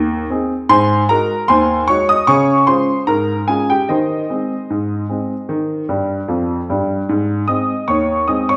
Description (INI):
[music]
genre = ragtime piano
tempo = 75 BPM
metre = 2/4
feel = straight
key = Ab major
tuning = A4 = 438 Hz
[part]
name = clear upright piano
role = solo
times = 0.0-8.6 s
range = Eb2 to Eb6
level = -16 LUFS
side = equal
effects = none
[sound]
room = wet recital hall reverb, RT60 1.4 s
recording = recorded in a church or concert hall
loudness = -16 LUFS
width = mono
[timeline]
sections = 0.0-8.6 A section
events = upright piano fill 5.9-7.1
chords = 0.0 Ab; 0.7 Ab7; 2.3 Db; 3.9 Ab/Eb; 5.5 Eb; 7.1 Ab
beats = | 0.68 1.48 | 2.27 3.08 | 3.88 4.69 | 5.49 6.30 | 7.10 7.90